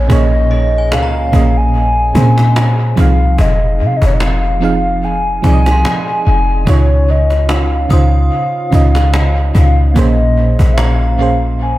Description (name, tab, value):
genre	contemporary R&B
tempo	73 BPM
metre	4/4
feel	swing 54% on 16ths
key	Bb minor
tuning	A4 = 442 Hz
part	hollow clarinet-like synth lead	melody	0.0-11.8 s	Db5 to Ab5	-17 LUFS	left 1 dB	chorus, dub echo
part	FM electric piano with tremolo	accompaniment	0.0-11.8 s	Bb2 to F5	-17 LUFS	right 4 dB	none
part	clean 808-style bass	bass	0.0-11.8 s	F1 to C3	-12 LUFS	equal	none
part	downlifter	sound effects	0.0-3.4 s	none	-38 LUFS	left 1 dB	none
part	synth chime	texture	0.0-11.8 s	Eb5 to Eb6	-31 LUFS	left 2 dB	ensemble chorus, dub echo
part	cajon	drums	0.1-11.7 s	none	-20 LUFS	equal	dub echo
room	digital ambience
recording	echo-heavy mix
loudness	-10 LUFS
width	side -16 dB against mid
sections	0.0-11.8 A section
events	none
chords	0.0 Bbm7; 3.0 Fm7; 6.7 Dbmaj7; 10.0 Bbm7